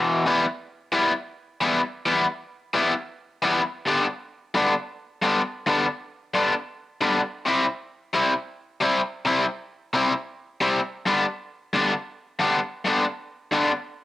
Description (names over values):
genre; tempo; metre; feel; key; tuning
rock; 134 BPM; 4/4; straight; E minor; A4 = 443 Hz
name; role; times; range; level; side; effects
overdriven electric guitar; solo; 0.0-13.7 s; E2 to E4; -21 LUFS; left 1 dB; none
room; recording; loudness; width
moderate spring reverb, RT60 1.3 s; home recording on cassette; -22 LUFS; side -15 dB against mid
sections
0.3-14.0 A section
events
none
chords
0.3 Em; 3.9 G; 7.5 C; 11.1 G